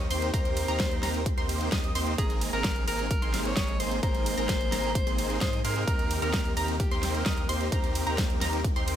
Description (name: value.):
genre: EDM, festival progressive house.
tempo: 130 BPM.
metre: 4/4.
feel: straight.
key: Eb major.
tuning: A4 = 440 Hz.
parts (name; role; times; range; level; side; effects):
clear alto saxophone; melody; 0.0-8.4 s; G4 to Db5; -34 LUFS; left 2 dB; digital delay.
lush unison pad; sustained chords; 0.0-9.0 s; C3 to G4; -39 LUFS; right 1 dB; chorus, phaser, sidechain pumping.
wide unison pluck; arpeggios; 0.0-9.0 s; Bb5 to Eb6; -36 LUFS; right 1 dB; sidechain pumping, digital delay.
big supersaw lead; riff; 0.0-9.0 s; Bb3 to Eb5; -33 LUFS; right 1 dB; cassette tape, sidechain pumping, digital delay.
saturated sub bass; bass; 0.0-9.0 s; Ab1 to Ab2; -33 LUFS; equal; sidechain pumping.
big-room dance drum kit; drums; 0.1-9.0 s; hi-hat, ride cymbal, snare drum; -34 LUFS; equal; none.
electronic kick drum; drums; 0.3-8.7 s; none; -29 LUFS; equal; none.
room: little or no reverb.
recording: none.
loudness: -25 LUFS.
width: side -10 dB against mid.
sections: 0.0-9.0 A section.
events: none.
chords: 0.0 Eb6; 2.2 Abadd9; 5.9 Eb6.